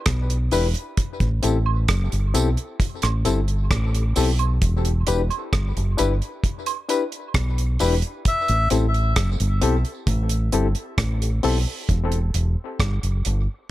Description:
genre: dub reggae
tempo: 66 BPM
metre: 4/4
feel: straight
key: E minor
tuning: A4 = 440 Hz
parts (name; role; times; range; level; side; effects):
- fingered electric bass; bass; 0.1-13.5 s; E1 to B1; -21 LUFS; equal; none
- deep reggae drum kit; drums; 0.1-13.5 s; hi-hat, kick drum, rim click; -24 LUFS; right 1 dB; none
- barky reed electric piano; stabs; 0.5-11.6 s; C4 to B4; -26 LUFS; left 5 dB; overdrive, fast tremolo, tape echo
- tambourine and woodblock; percussion; 0.5-8.9 s; none; -32 LUFS; right 9 dB; tape echo
- melodica; melody; 8.3-8.7 s; E5; -25 LUFS; left 2 dB; tape echo
room: studio ambience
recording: none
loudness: -19 LUFS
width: side -15 dB against mid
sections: 0.0-13.7 A section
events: break 0.0-8.3; part muted 8.3-13.7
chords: 0.0 Em7; 1.0 Am7; 4.6 Em7; 8.3 Am7; 11.9 Em

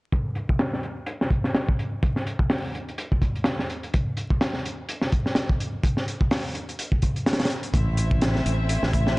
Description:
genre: breakbeat, breaks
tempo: 126 BPM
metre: 4/4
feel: swing 57% on 16ths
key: A minor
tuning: A4 = 441 Hz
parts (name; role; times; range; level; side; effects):
- crunchy breakbeat drum kit; drums; 0.1-9.2 s; hi-hat, kick drum, snare drum; -23 LUFS; equal; low-pass filter on kick, low-pass filter on hats, low-pass filter on snare, low-pass filter on room
- clear symphonic string section; sustained chords; 7.7-9.2 s; A3 to E5; -29 LUFS; left 1 dB; vintage 12-bit sampler grit, sidechain pumping
- modern bright fingered electric bass; bass; 7.7-9.2 s; A1; -23 LUFS; equal; none
room: studio ambience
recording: vinyl crackle, nothing above 10.9 kHz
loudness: -22 LUFS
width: side -22 dB against mid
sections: 0.1-9.2 A section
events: filter sweep on drum 0.1-9.2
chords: 0.1 Am

